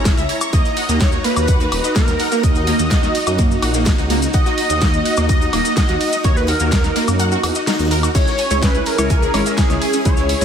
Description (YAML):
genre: progressive house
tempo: 126 BPM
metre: 4/4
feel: straight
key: unclear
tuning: A4 = 439 Hz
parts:
  - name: supersaw pad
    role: sustained chords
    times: 0.0-10.4 s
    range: C#4 to A#5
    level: -25 LUFS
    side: equal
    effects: sidechain pumping
  - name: dark detuned saw bass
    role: bass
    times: 0.0-10.4 s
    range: D#1 to F#2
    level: -21 LUFS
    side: equal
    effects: sidechain pumping
  - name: wide unison pluck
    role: arpeggios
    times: 0.1-10.3 s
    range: A#3 to C#6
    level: -22 LUFS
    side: right 1 dB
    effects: wide subtle chorus, sidechain pumping, diffuse ambient delay
  - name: electronic kick drum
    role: drums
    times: 0.1-10.2 s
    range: none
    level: -17 LUFS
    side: equal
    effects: none
  - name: modern studio drum kit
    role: drums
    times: 0.1-10.4 s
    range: hi-hat, snare drum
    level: -34 LUFS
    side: left 2 dB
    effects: none
  - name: pop drum kit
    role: drums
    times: 0.1-10.4 s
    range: crash cymbal, hi-hat, ride cymbal, snare drum, woodblock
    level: -24 LUFS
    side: left 1 dB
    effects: none
  - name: cabasa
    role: percussion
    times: 0.1-10.4 s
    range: none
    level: -30 LUFS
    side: left 5 dB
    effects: none
  - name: wide unison lead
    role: melody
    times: 0.5-10.4 s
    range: G#4 to D#5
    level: -22 LUFS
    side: equal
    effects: analog chorus, ping-pong delay
  - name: wide unison pluck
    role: stabs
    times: 8.1-10.4 s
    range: G#3 to C#5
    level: -23 LUFS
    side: left 2 dB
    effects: sidechain pumping, diffuse ambient delay
room: light reverb, digital ambience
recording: none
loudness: -14 LUFS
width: side -8 dB against mid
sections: 0.0-10.4 A section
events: kick drops out 7.2-8.1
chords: 0.0 C#m; 0.5 D#m; 8.1 C#m